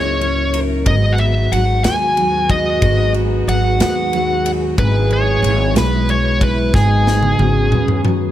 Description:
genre	six-eight pop ballad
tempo	61 BPM (dotted quarters)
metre	6/8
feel	straight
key	G# minor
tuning	A4 = 438 Hz
part	smooth overdriven lead guitar	melody	0.0-8.0 s	G#4 to G#5	-19 LUFS	equal	digital delay
part	mellow French horn section	second line	0.0-8.3 s	C#4 to G#4	-24 LUFS	right 3 dB	digital delay
part	fingerpicked steel-string acoustic guitar	accompaniment	0.0-8.3 s	G#2 to A#4	-21 LUFS	equal	double-tracked left and right
part	mellow tonewheel organ	sustained chords	0.0-8.3 s	C#3 to G#4	-26 LUFS	left 1 dB	chorus vibrato, slow rotary speaker
part	upright bass	bass	0.0-8.3 s	G#1 to D#2	-18 LUFS	equal	none
part	modern studio drum kit	drums	0.2-8.2 s	kick drum, ride cymbal, snare drum, toms	-21 LUFS	equal	none
room	small room reverb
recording	none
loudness	-13 LUFS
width	side -12 dB against mid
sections	0.0-8.3 A section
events	drum fill 6.7-8.3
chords	0.0 F#7; 0.9 G#m7; 4.8 E/G#; 6.7 G#m7

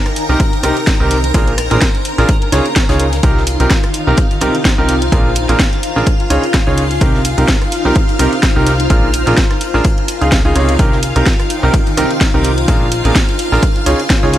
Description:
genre	piano house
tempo	127 BPM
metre	4/4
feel	swing 56% on 16ths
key	C minor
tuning	A4 = 438 Hz
part	string machine, violins	sustained chords	0.0-14.4 s	F4 to Bb5	-21 LUFS	left 1 dB	ensemble chorus, sidechain pumping
part	granular cloud pad	texture	0.0-14.4 s	Eb4 to Bb5	-22 LUFS	left 1 dB	built-in reverb, sidechain pumping
part	garage drum kit	drums	0.1-14.4 s	hi-hat, rim click, snare drum	-19 LUFS	equal	overdrive
part	loose indie drum kit	drums	0.1-14.4 s	hi-hat, snare drum	-30 LUFS	left 3 dB	none
part	clear concert grand piano	riff	0.3-14.4 s	Bb2 to F5	-17 LUFS	right 1 dB	sidechain pumping, digital delay
part	plucky analog bass	bass	0.3-14.4 s	Bb1 to Db2	-16 LUFS	equal	sidechain pumping
part	electronic kick drum	drums	0.4-14.2 s	none	-14 LUFS	equal	none
room	small room ambience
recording	none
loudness	-11 LUFS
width	side -12 dB against mid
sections	0.0-14.4 A section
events	none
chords	0.0 Cm7; 1.3 Bb7; 2.3 Dbadd9; 3.2 Cm7; 5.1 Bb7; 6.1 Dbadd9; 7.0 Cm7; 8.9 Bb7; 9.8 Dbadd9; 10.8 Cm7; 12.7 Bb7; 13.6 Dbadd9

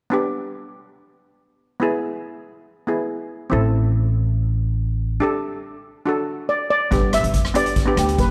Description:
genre	calypso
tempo	141 BPM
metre	4/4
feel	straight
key	G major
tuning	A4 = 440 Hz
part	steel pan	accompaniment	0.1-8.3 s	B3 to A4	-25 LUFS	equal	none
part	upright bass	bass	3.5-8.3 s	F#1 to D2	-22 LUFS	equal	none
part	steel pan	melody	6.5-8.3 s	G4 to E5	-23 LUFS	equal	none
part	street-band drum kit	drums	6.9-8.3 s	hi-hat, kick drum, rim click	-24 LUFS	equal	none
room	light reverb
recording	none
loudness	-21 LUFS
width	mono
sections	0.1-6.9 A section; 6.9-8.3 B section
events	break 5.2-6.9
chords	0.1 G; 1.8 E; 3.5 Am; 5.2 Dsus4; 6.1 D; 6.9 G

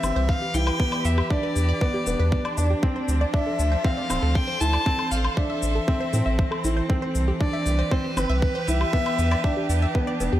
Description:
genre	piano and strings electronica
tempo	118 BPM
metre	4/4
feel	straight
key	unclear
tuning	A4 = 440 Hz
part	rich violin	melody	0.0-9.7 s	B4 to A5	-29 LUFS	left 2 dB	tape echo
part	clear string quartet	sustained chords	0.0-10.4 s	E3 to C5	-30 LUFS	equal	sidechain pumping
part	warm upright piano	riff	0.0-10.4 s	B3 to E4	-28 LUFS	right 2 dB	tape echo
part	round analog bass	bass	0.0-10.4 s	D1 to A2	-23 LUFS	equal	sidechain pumping
part	shaker and woodblock	drums	0.0-10.3 s	none	-32 LUFS	left 1 dB	overdrive
part	wide unison pluck	arpeggios	0.2-10.4 s	G4 to E5	-34 LUFS	left 1 dB	sidechain pumping, tape echo
part	electronic kick drum	drums	0.3-10.1 s	none	-24 LUFS	equal	overdrive
room	light reverb, small room ambience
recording	none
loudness	-21 LUFS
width	side -13 dB against mid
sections	0.0-10.4 A section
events	none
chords	0.0 Cmaj7; 0.8 Em7; 2.8 Dm7; 4.9 Am; 6.9 Cmaj7; 8.9 Em7

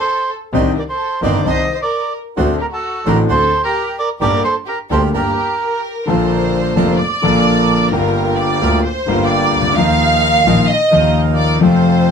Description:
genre	tango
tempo	130 BPM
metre	4/4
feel	rubato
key	G harmonic minor, Bb major from 6.1 s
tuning	A4 = 440 Hz
part	bandoneon	melody	0.0-5.8 s	A4 to Eb5	-18 LUFS	right 3 dB	none
part	warm studio violin section	second line	0.0-12.1 s	F#4 to F5	-18 LUFS	right 1 dB	none
part	warm concert grand piano	accompaniment	0.5-12.1 s	F1 to A4	-15 LUFS	left 3 dB	none
part	bandoneon	stabs	0.5-12.1 s	C4 to C5	-22 LUFS	right 8 dB	none
part	clear double bass	bass	0.5-12.1 s	F1 to F2	-21 LUFS	right 2 dB	none
room	moderate studio reverb, RT60 0.6 s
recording	band playing live in one room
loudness	-13 LUFS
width	side -6 dB against mid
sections	0.0-6.1 A section; 6.1-12.1 B section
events	violin section solo 6.1-12.1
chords	0.0 N.C.; 0.5 Cmadd9; 2.4 D7; 4.2 Gm; 6.1 Bbmaj7; 7.9 Gm7; 9.8 Ebsus2

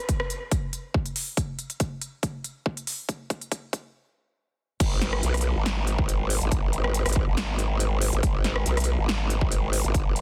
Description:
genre	heavy wobble dubstep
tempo	140 BPM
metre	4/4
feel	half-time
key	G# minor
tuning	A4 = 439 Hz
part	big-room dance drum kit	drums	0.1-10.2 s	crash cymbal, hi-hat, rim click, snare drum	-32 LUFS	equal	overdrive, high-pass filter on snare, high-pass filter on toms, high-pass filter on hats, high-pass filter on cymbals, high-pass filter on room
part	electronic kick drum	drums	0.1-10.0 s	none	-28 LUFS	equal	overdrive
part	growl bass	bass	4.8-10.2 s	G#1 to B1	-27 LUFS	equal	chorus, overdrive
room	little or no reverb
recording	dense, heavily limited modern master, high-pass filter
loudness	-27 LUFS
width	mono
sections	0.0-4.8 A section; 4.8-10.2 B section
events	build-up 0.0-4.8; filter sweep 0.0-4.8; drum fill 1.4-3.9; stop 3.9-4.8; drop 4.8-10.2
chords	none

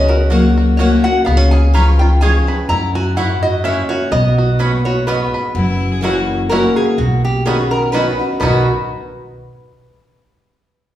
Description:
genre	bluegrass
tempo	126 BPM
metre	3/4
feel	swing 55% on 8ths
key	B major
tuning	A4 = 440 Hz
part	lap resonator guitar	melody	0.0-8.6 s	F#4 to A#5	-20 LUFS	left 1 dB	none
part	picked steel-string acoustic guitar	accompaniment	0.0-8.6 s	F#2 to F#4	-19 LUFS	left 2 dB	none
part	bluegrass banjo	arpeggios	0.0-8.7 s	B3 to B4	-21 LUFS	right 1 dB	none
part	upright bass	bass	0.0-8.7 s	F#1 to F#2	-16 LUFS	equal	none
part	mandolin	stabs	0.3-8.6 s	A#3 to B5	-25 LUFS	right 3 dB	none
part	clear fiddle	second line	5.6-8.7 s	E4 to G#4	-28 LUFS	left 5 dB	none
room	wet recital hall reverb, RT60 1.4 s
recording	recorded in a church or concert hall, small room ambience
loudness	-12 LUFS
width	side -12 dB against mid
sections	0.0-5.6 A section; 5.6-8.4 B section; 8.4-9.8 C section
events	none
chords	0.0 F#; 1.3 C#; 2.7 F#7; 4.1 Badd9; 5.6 F#7; 7.0 Badd9

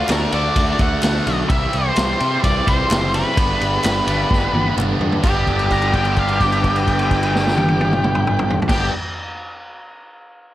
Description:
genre	classic rock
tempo	128 BPM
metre	4/4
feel	straight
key	G major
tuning	A4 = 440 Hz
part	octave-fuzz lead guitar	second line	0.0-1.4, 5.7-8.9 s	Bb4 to Bb5	-25 LUFS	left 2 dB	distortion
part	tonewheel organ	sustained chords	0.0-8.9 s	B3 to D5	-31 LUFS	equal	none
part	distorted electric guitar	riff	0.0-8.9 s	G2 to G4	-22 LUFS	right 1 dB	overdrive
part	fuzz picked electric bass	bass	0.0-8.9 s	F#1 to C3	-22 LUFS	equal	overdrive
part	vintage drum kit	drums	0.1-8.8 s	crash cymbal, kick drum, ride cymbal, snare drum, toms	-21 LUFS	equal	none
part	group handclap	percussion	0.1-5.5 s	none	-32 LUFS	left 2 dB	none
part	octave-fuzz lead guitar	melody	1.5-8.9 s	G4 to E5	-21 LUFS	equal	distortion
room	light reverb, studio reverb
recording	none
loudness	-15 LUFS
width	side -14 dB against mid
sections	0.0-5.2 A section; 5.2-9.0 B section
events	drum fill 4.3-5.2; held note 5.2-8.7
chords	0.0 D; 1.5 C; 3.4 G

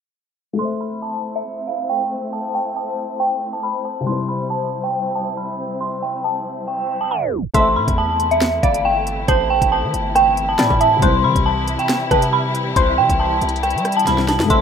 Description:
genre	hip hop, drill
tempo	138 BPM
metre	4/4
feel	half-time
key	A minor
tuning	A4 = 440 Hz
part	felt-muted upright piano	accompaniment	0.5-14.6 s	C3 to E5	-25 LUFS	left 4 dB	low-pass filter
part	dark detuned synth bell	melody	0.6-14.6 s	E5 to C6	-19 LUFS	right 1 dB	chorus, phaser, low-pass filter, plate reverb
part	warm symphonic string section	sustained chords	0.6-14.6 s	C3 to C5	-27 LUFS	left 2 dB	plate reverb
part	warbly dusty pluck	second line	7.5-14.6 s	B4 to E5	-24 LUFS	equal	chorus, phaser, plate reverb, ping-pong delay
part	hard-hitting 808-style bass	bass	7.5-14.6 s	G1 to G3	-24 LUFS	equal	none
part	drill drum kit	drums	7.5-14.6 s	hi-hat, kick drum, rim click, snare drum	-21 LUFS	equal	none
room	moderate studio reverb, RT60 0.5 s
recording	rough home demo mix, low-pass filter, tape stop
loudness	-16 LUFS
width	side -7 dB against mid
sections	0.6-7.5 A section; 7.5-14.6 B section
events	filter sweep 0.6-7.5; tape stop 7.1-7.5; drum fill 14.1-14.5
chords	0.6 Am; 4.1 C; 7.5 Am; 11.0 C

